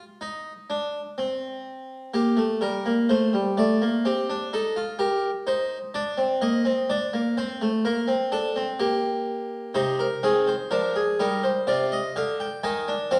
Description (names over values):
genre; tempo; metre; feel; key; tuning
classical, baroque-style 3-part fugue for harpsichord; 63 BPM; 4/4; straight; C minor; A4 = 440 Hz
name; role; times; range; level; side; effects
harpsichord; solo; 0.0-13.2 s; C3 to Ab5; -25 LUFS; equal; none
room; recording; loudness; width
wet recital hall reverb, RT60 1.3 s; heard from further back in the room; -25 LUFS; mono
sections
0.0-13.2 A section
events
none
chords
0.0 N.C.; 2.1 Gm; 4.1 Cm; 6.0 D5; 7.9 Gm/Bb; 9.8 Cm; 11.7 Fm/C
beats
0.21 1.18 | 2.14 3.10 4.06 5.01 | 5.96 6.90 7.85 8.80 | 9.76 10.72 11.68 12.64